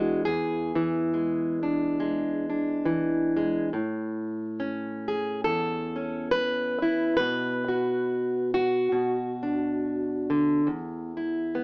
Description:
folk, solo fingerstyle acoustic guitar; 69 BPM; 4/4; swing 57% on 8ths; A major; A4 = 440 Hz
fingerpicked plugged-in steel-string acoustic guitar; solo; 0.0-11.6 s; E2 to B4; -27 LUFS; equal
moderate studio reverb, RT60 0.6 s; AM radio sound; -27 LUFS; mono
0.0-3.7 A section; 3.7-11.6 B section
0.0 E7; 3.7 Aadd9; 7.2 Bm; 10.7 E5
| 0.27 1.14 2.00 2.87 | 3.73 4.60 5.46 6.33 | 7.20 8.06 8.93 9.80 | 10.66 11.53

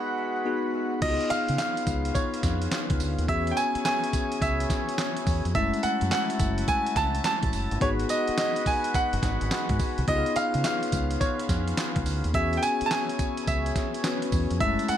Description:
R&B, new jack swing; 106 BPM; 4/4; swing 65% on 16ths; A4 = 439 Hz
bright grand piano; melody; 0.0-15.0 s; C#5 to A5; -28 LUFS; right 2 dB; ping-pong delay
bell-like tine electric piano; accompaniment; 0.0-15.0 s; G#3 to B4; -31 LUFS; left 5 dB
mellow accordion; sustained chords; 0.0-15.0 s; C#3 to A5; -34 LUFS; right 1 dB
deep dub fingered electric bass; bass; 1.0-14.9 s; F#1 to C#3; -29 LUFS; equal
dusty soul sampler-style drum kit; drums; 1.0-15.0 s; crash cymbal, handclaps, hi-hat, kick drum, snare drum, tambourine; -30 LUFS; equal
light reverb; -24 LUFS; side -10 dB against mid
0.0-1.0 A section; 1.0-15.0 A section
break 0.0-1.0
0.0 G#m7; 1.0 C#7; 3.3 E6; 5.5 F#m7; 7.8 G#m7; 10.1 C#7; 12.3 E6
0.45 | 1.02 1.59 2.15 2.72 | 3.29 3.85 4.42 4.98 | 5.55 6.12 6.68 7.25 | 7.81 8.38 8.95 9.51 | 10.08 10.64 11.21 11.78 | 12.34 12.91 13.47 14.04 | 14.61

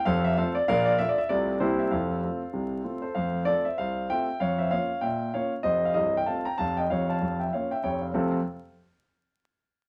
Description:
jazz, stride piano; 193 BPM; 4/4; swing 60% on 8ths; F major; A4 = 440 Hz
dark concert grand piano; solo; 0.0-8.4 s; C1 to Bb5; -27 LUFS; equal
moderate club reverb, RT60 0.7 s; vinyl crackle; -27 LUFS; mono
0.0-3.2 A section; 3.2-8.1 B section; 8.1-9.4 C section
0.1 F; 0.7 Bbmaj7; 1.3 F/C; 1.6 C7; 1.9 F; 4.4 Bbm/F; 5.7 F7; 6.9 Bbm/F; 8.1 F
0.05 0.36 | 0.68 0.99 1.30 1.61 | 1.92 2.23 2.54 2.85 | 3.16 3.47 3.78 4.10 | 4.41 4.72 5.03 5.34 | 5.65 5.96 6.28 6.59 | 6.90 7.21 7.52 7.83 | 8.15

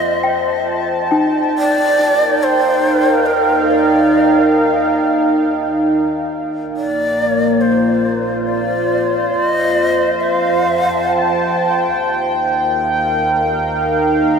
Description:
ambient; 69 BPM; 3/4; straight; Eb lydian; A4 = 436 Hz
breathy bright long shakuhachi; melody; 0.0-11.5 s; Bb4 to F5; -18 LUFS; equal; ping-pong delay
warm analog pad; sustained chords; 0.0-14.4 s; Bb3 to A5; -15 LUFS; right 1 dB; chorus
small celesta; arpeggios; 0.0-1.9 s; Eb4 to G5; -22 LUFS; left 1 dB; ping-pong delay
muted studio double bass section; bass; 0.0-14.4 s; Bb1 to F2; -32 LUFS; equal
wet cathedral reverb, RT60 6.5 s; -13 LUFS; side -6 dB against mid
0.0-1.5 A section; 1.5-14.4 B section
fade-in on double bass section 1.5-14.4
0.0 F7; 1.5 Ebmaj9; 6.8 Bb69; 9.4 F7; 12.0 Ebadd9
0.68 | 1.54 2.41 3.28 | 4.15 5.02 5.89 | 6.76 7.63 8.50 | 9.37 10.24 11.11 | 11.98 12.85 13.72

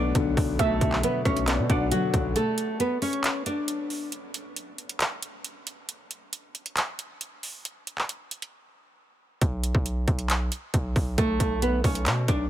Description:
hip hop, trap; 136 BPM; 4/4; half-time; B minor; A4 = 440 Hz
nylon-string guitar; melody; 0.0-4.1, 11.2-12.5 s; F#3 to D5; -27 LUFS; equal; low-pass filter
warbly dusty pluck; second line; 0.0-1.9 s; D5 to F#5; -33 LUFS; right 8 dB; chorus, tape echo
dark grand piano; accompaniment; 0.0-2.4 s; B2 to B3; -30 LUFS; left 6 dB; low-pass filter
distorted 808-style bass; bass; 0.0-2.3, 9.4-12.5 s; B1 to B2; -28 LUFS; equal; distortion
trap drum kit; drums; 0.2-12.4 s; handclaps, hi-hat, kick drum, rim click; -27 LUFS; equal
digital ambience; -24 LUFS; side -12 dB against mid
0.0-2.4 A section; 2.4-12.5 B section
break 2.4-11.2
0.0 Bm7; 2.4 Bm7 (rootless); 5.9 N.C.; 9.4 B7(no3)
0.15 | 0.59 1.03 1.47 1.92 | 2.36 2.80 3.24 3.68 | 4.12 4.56 5.00 5.45 | 5.89 6.33 6.77 7.21 | 7.65 8.09 8.53 8.97 | 9.41 9.86 10.30 10.74 | 11.18 11.62 12.06

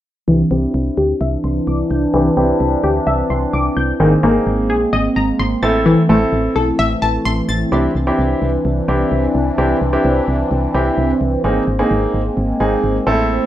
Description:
synth-pop; 129 BPM; 4/4; straight; C major; A4 = 440 Hz
warm grand piano; accompaniment; 0.3-13.5 s; A3 to A4; -18 LUFS; right 1 dB; low-pass filter
sweeping resonant pad; sustained chords; 0.3-13.5 s; E3 to D4; -19 LUFS; equal; chorus, phaser, low-pass filter
analog pluck; arpeggios; 0.3-7.6 s; Eb3 to A6; -17 LUFS; left 1 dB; chorus, low-pass filter, ping-pong delay
solid FM bass; bass; 0.3-13.4 s; Ab1 to D2; -20 LUFS; equal
wet studio reverb, RT60 0.6 s; rough home demo mix; -14 LUFS; side -12 dB against mid
0.3-7.7 A section; 7.7-13.5 B section
filter sweep 0.3-7.7
0.3 Cadd9; 4.0 Abadd9; 5.6 Am; 7.7 Cadd9; 11.4 Abadd9
| 0.28 0.74 1.21 1.67 | 2.14 2.60 3.07 3.53 | 4.00 4.46 4.93 5.39 | 5.86 6.33 6.79 7.25 | 7.72 8.19 8.65 9.12 | 9.58 10.05 10.51 10.98 | 11.44 11.91 12.37 12.84 | 13.30

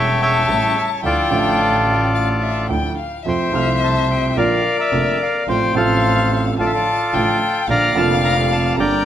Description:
tango; 108 BPM; 4/4; rubato; D minor, F major from 3.3 s; A4 = 440 Hz
bandoneon; melody; 0.0-9.1 s; F4 to Bb5; -18 LUFS; left 1 dB
warm violin; second line; 0.0-9.1 s; D5 to Bb5; -22 LUFS; left 6 dB
clear upright piano; accompaniment; 0.0-9.0 s; E1 to E5; -22 LUFS; right 5 dB
clear double bass; bass; 0.0-9.0 s; E1 to F2; -22 LUFS; right 1 dB
wet large studio reverb, RT60 1.4 s; -15 LUFS; side -10 dB against mid
0.0-3.3 A section; 3.3-9.1 B section
0.0 A7; 1.0 Dmadd9; 3.3 F; 4.4 Bb; 5.5 F/A; 6.6 Dm/A; 7.7 Bb
0.49 | 1.04 1.59 2.15 2.70 | 3.26 3.81 4.37 4.92 | 5.47 6.03 6.58 7.13 | 7.68 8.23 8.79

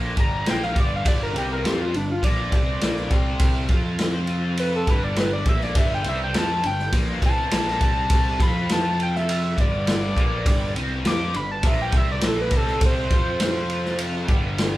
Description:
psychedelic rock; 102 BPM; 4/4; straight; G mixolydian; A4 = 440 Hz
overdriven electric guitar; riff; 0.0-14.8 s; G2 to F4; -28 LUFS; equal; rotary speaker
fuzz fingered electric bass; bass; 0.0-14.8 s; G1 to F2; -28 LUFS; equal; overdrive
overdriven synth lead; melody; 0.2-14.0 s; D4 to D6; -26 LUFS; equal; distortion
vintage drum kit; drums; 0.2-14.7 s; kick drum, ride cymbal, snare drum; -22 LUFS; equal
tonewheel organ; sustained chords; 1.1-14.8 s; C3 to F5; -36 LUFS; right 1 dB
moderate large studio reverb, RT60 0.9 s; band playing live in one room; -20 LUFS; side -16 dB against mid
0.0-14.8 A section
analog synth lead solo 0.0-14.8
0.0 G; 3.1 C5; 3.7 F5; 4.9 G; 7.8 C5; 8.4 F5; 9.6 G; 12.5 C5; 13.1 F5
0.47 | 1.06 1.65 2.23 2.82 | 3.41 4.00 4.58 5.17 | 5.76 6.35 6.93 7.52 | 8.11 8.70 9.29 9.88 | 10.46 11.05 11.64 12.23 | 12.82 13.41 14.00 14.59

